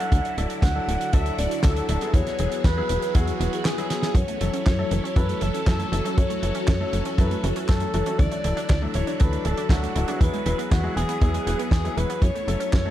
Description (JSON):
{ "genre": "italo disco", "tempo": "119 BPM", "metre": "4/4", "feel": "straight", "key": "F# minor", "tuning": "A4 = 440 Hz", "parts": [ { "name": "breathy alto saxophone", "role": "melody", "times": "0.0-12.9 s", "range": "F#4 to F#5", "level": "-29 LUFS", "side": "left 1 dB", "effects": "digital delay" }, { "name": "phased string machine", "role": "sustained chords", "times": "0.0-12.9 s", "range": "D3 to A4", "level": "-32 LUFS", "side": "equal", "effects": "ensemble chorus, phaser" }, { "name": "clear baby grand piano", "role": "stabs", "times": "0.0-12.9 s", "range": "F#3 to A4", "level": "-31 LUFS", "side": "left 3 dB", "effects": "none" }, { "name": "damped 70s drum kit", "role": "drums", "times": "0.0-12.8 s", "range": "handclaps, hi-hat, snare drum", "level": "-31 LUFS", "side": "right 1 dB", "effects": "studio reverb" }, { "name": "tight sequencer bass", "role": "bass", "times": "0.1-12.9 s", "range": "D1 to F#2", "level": "-26 LUFS", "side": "equal", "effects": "tube saturation" }, { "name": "kick drum", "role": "drums", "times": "0.1-12.8 s", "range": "none", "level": "-20 LUFS", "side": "equal", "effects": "studio reverb" }, { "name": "wide unison pluck", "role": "arpeggios", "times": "4.2-12.9 s", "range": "E3 to D4", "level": "-32 LUFS", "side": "right 4 dB", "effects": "digital delay" } ], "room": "small room ambience", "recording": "dark, warm production", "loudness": "-21 LUFS", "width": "side -12 dB against mid", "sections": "0.0-12.9 A section", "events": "drum fill 3.9", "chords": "0.1 Dadd9; 2.1 Eadd9; 4.2 F#m7; 8.2 Dadd9; 10.2 Eadd9; 12.2 F#m7" }